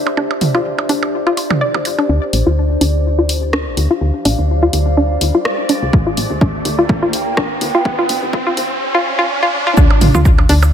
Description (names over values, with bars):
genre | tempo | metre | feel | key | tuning
minimal techno | 125 BPM | 4/4 | swing 56% on 16ths | D minor | A4 = 440 Hz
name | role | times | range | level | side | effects
woody FM bass | bass | 0.0-10.7 s | A1 to F2 | -16 LUFS | equal | sidechain pumping, high-pass filter
bubbling stepped-filter texture | texture | 0.0-8.8 s | D5 | -27 LUFS | right 2 dB | chorus, built-in reverb, sidechain pumping
warbly tape-like pad | texture | 0.0-8.8 s | D4 to G5 | -22 LUFS | left 1 dB | chorus, built-in reverb, sidechain pumping
electronic percussion blips and toms | percussion | 0.1-2.1, 9.8-10.7 s | none | -19 LUFS | right 4 dB | digital delay
hollow square pluck | riff | 0.2-10.5 s | D4 to D5 | -18 LUFS | left 1 dB | chorus, sidechain pumping, ping-pong delay
house drum kit | drums | 0.4-10.7 s | hi-hat, rim click, shaker | -21 LUFS | left 1 dB | high-pass filter on hats, high-pass filter on snare, high-pass filter on perc
riser | sound effects | 3.4-9.8 s | none | -22 LUFS | right 2 dB | none
electronic kick drum | drums | 5.9-10.4 s | none | -13 LUFS | equal | none
room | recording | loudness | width
light reverb, digital ambience | high-pass filter | -12 LUFS | side -9 dB against mid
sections
0.0-2.1 A section; 2.1-9.8 B section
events
filter sweep on synth arpeggio sound 0.0-2.1, 2.1-9.8; build-up 2.1-9.8; filter sweep 2.1-9.8; riser 3.4-9.8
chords
0.0 Dm; 9.8 N.C.